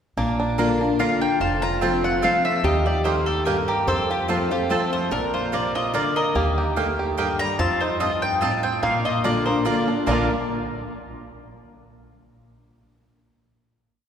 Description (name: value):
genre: bluegrass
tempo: 146 BPM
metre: 3/4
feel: swing 54% on 8ths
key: Bb major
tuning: A4 = 440 Hz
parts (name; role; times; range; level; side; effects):
- lap resonator guitar; second line; 0.2-10.3 s; D4 to C5; -30 LUFS; left 1 dB; none
- picked steel-string acoustic guitar; accompaniment; 0.2-10.3 s; F2 to F4; -25 LUFS; left 2 dB; none
- bluegrass banjo; arpeggios; 0.2-10.3 s; F3 to Bb4; -27 LUFS; right 3 dB; none
- upright bass; bass; 0.2-10.3 s; F1 to F2; -30 LUFS; equal; none
- mandolin; stabs; 0.6-10.3 s; Bb3 to Bb5; -30 LUFS; right 4 dB; none
- mandolin; melody; 1.0-10.3 s; F4 to Bb5; -25 LUFS; left 2 dB; none
room: wet church reverb, RT60 3.2 s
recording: recorded in a church or concert hall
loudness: -20 LUFS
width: side -8 dB against mid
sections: 0.2-10.1 A section; 10.1-11.3 final chord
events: none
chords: 0.2 Bb; 1.4 F; 2.6 Eb; 3.9 F; 5.1 Bb; 6.4 Eb; 7.6 F7; 8.8 Bb